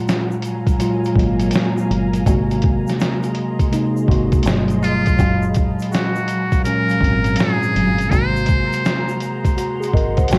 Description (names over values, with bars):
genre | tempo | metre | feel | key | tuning
lo-fi hip hop | 82 BPM | 4/4 | swing 66% on 16ths | unclear | A4 = 440 Hz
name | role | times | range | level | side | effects
mellow tine electric piano | accompaniment | 0.0-10.4 s | Ab2 to G5 | -22 LUFS | equal | cassette tape, low-pass filter
granular cloud pad | sustained chords | 0.0-10.4 s | Gb3 to C6 | -30 LUFS | equal | built-in reverb, low-pass filter, cassette tape
lo-fi sampler-style drum kit | drums | 0.1-10.4 s | hi-hat, kick drum, snare drum | -22 LUFS | equal | vintage 12-bit sampler grit, cassette tape
egg shaker | percussion | 0.1-10.4 s | none | -48 LUFS | equal | none
deep dub fingered electric bass | bass | 1.2-10.4 s | Gb1 to Ab1 | -25 LUFS | equal | none
trumpet with metal mute | melody | 4.8-9.2 s | F4 to C5 | -24 LUFS | equal | low-pass filter, tape echo
room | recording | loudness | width
light reverb | home recording on cassette | -18 LUFS | mono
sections
0.0-10.4 A section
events
tine electric piano fill 9.6-10.4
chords
0.0 Gbmaj9; 2.3 Ab9; 4.5 Gmaj9; 5.2 Gbmaj9; 8.1 Ab9